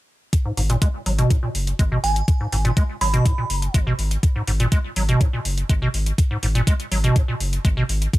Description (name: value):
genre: acid house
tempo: 123 BPM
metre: 4/4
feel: straight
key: G# minor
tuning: A4 = 445 Hz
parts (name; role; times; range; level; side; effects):
- electronic hi-hat; drums; 0.3-8.2 s; none; -29 LUFS; equal; overdrive
- electronic kick drum; drums; 0.3-8.2 s; none; -18 LUFS; equal; overdrive
- acid bass, square; riff; 0.5-7.8 s; G#2 to G#3; -23 LUFS; right 1 dB; lush chorus, cassette tape, sidechain pumping, digital delay
- round analog bass; bass; 0.6-8.1 s; F#1 to G#1; -22 LUFS; equal; sidechain pumping
- glassy synth bell; melody; 2.0-3.7 s; G#5 to B5; -27 LUFS; right 3 dB; chorus, tremolo, digital delay
room: light reverb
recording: none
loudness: -18 LUFS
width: side -17 dB against mid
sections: 0.3-8.2 A section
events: none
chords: 0.3 G#7(no3)